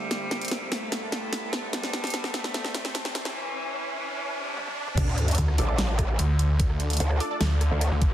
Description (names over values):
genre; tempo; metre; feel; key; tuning
heavy wobble dubstep; 148 BPM; 4/4; half-time; D minor; A4 = 440 Hz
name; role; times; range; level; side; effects
clear cello; melody; 0.0-4.9 s; C3 to A3; -35 LUFS; equal; dub echo
evolving wavetable pad; sustained chords; 0.0-8.1 s; G2 to A4; -38 LUFS; equal; phaser, built-in reverb, sidechain pumping
riser and sub drop; sound effects; 0.0-6.6 s; none; -34 LUFS; equal; none
dubstep drum kit; drums; 0.1-8.1 s; crash cymbal, hi-hat, rim click, snare drum, toms; -30 LUFS; equal; studio reverb
growl bass; bass; 5.0-7.9 s; A1 to D2; -24 LUFS; equal; distortion, chorus, overdrive
electronic kick drum; drums; 5.0-8.1 s; none; -24 LUFS; equal; studio reverb
snarling distorted saw bass; bass; 5.4-8.1 s; D2; -24 LUFS; equal; distortion, overdrive
orchestra-hit-like synth stab; stabs; 5.6-7.4 s; D4 to D5; -36 LUFS; right 1 dB; built-in reverb, dub echo
room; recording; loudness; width
light reverb; dense, heavily limited modern master, high-pass filter; -24 LUFS; side -12 dB against mid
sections
0.0-5.0 A section; 5.0-8.1 B section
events
build-up 0.0-5.0; drum fill 0.0-3.4, 4.6-5.0; riser 0.0-5.0; drop 5.0-8.1; impact 5.0-6.6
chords
0.1 Am7; 1.7 Gmadd9; 3.4 N.C.; 5.0 Dm